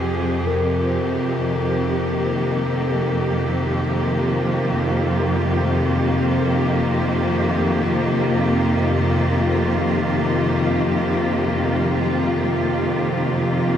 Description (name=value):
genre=dark ambient drone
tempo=free time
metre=none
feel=none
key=unclear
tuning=A4 = 439 Hz
part: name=rich studio cello section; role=sustained chords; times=0.0-13.8 s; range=F2 to Ab4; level=-20 LUFS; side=equal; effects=shimmer reverb
part: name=bowed-like drone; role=drone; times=0.0-13.8 s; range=F2 to C3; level=-21 LUFS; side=equal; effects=built-in reverb
part: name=bronze singing bowl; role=texture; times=0.5-13.8 s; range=Bb4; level=-31 LUFS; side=left 3 dB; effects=shimmer reverb
room=wet huge ambient reverb, RT60 8.9 s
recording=none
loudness=-18 LUFS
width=side -9 dB against mid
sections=0.0-13.8 A section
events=none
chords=0.5 Eb/F